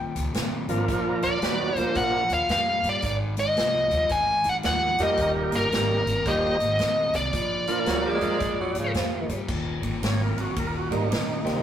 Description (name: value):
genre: electric blues shuffle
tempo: 112 BPM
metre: 4/4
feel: swing 64% on 8ths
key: Eb major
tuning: A4 = 439 Hz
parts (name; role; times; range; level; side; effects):
- smooth overdriven lead guitar; melody; 0.0-8.9 s; Bb4 to Ab5; -24 LUFS; equal; none
- overdriven semi-hollow guitar; riff; 0.0-11.6 s; Eb2 to G3; -32 LUFS; left 3 dB; none
- upright bass; bass; 0.0-11.6 s; Eb1 to Ab2; -32 LUFS; right 1 dB; none
- swinging big-band drum kit; drums; 0.2-11.5 s; crash cymbal, hi-hat, kick drum, ride cymbal, snare drum; -32 LUFS; equal; none
- tonewheel organ; accompaniment; 0.7-11.6 s; Eb3 to Db5; -27 LUFS; right 2 dB; slow rotary speaker, overdrive
- growling tenor saxophone; second line; 7.9-9.4 s; Db3 to Ab3; -29 LUFS; right 2 dB; none
room: moderate stone room reverb, RT60 1.2 s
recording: rough rehearsal-room recording, tube saturation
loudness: -22 LUFS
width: side -10 dB against mid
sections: 0.0-9.5 A section; 9.5-11.6 B section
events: none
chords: 0.0 Eb; 0.9 Bb; 3.0 Ab; 5.2 Eb; 7.3 Bb; 9.5 Eb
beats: 0.35 | 0.89 1.42 1.96 2.50 | 3.03 3.57 4.11 4.64 | 5.18 5.72 6.26 6.79 | 7.33 7.87 8.41 8.95 | 9.48 10.02 10.56 11.10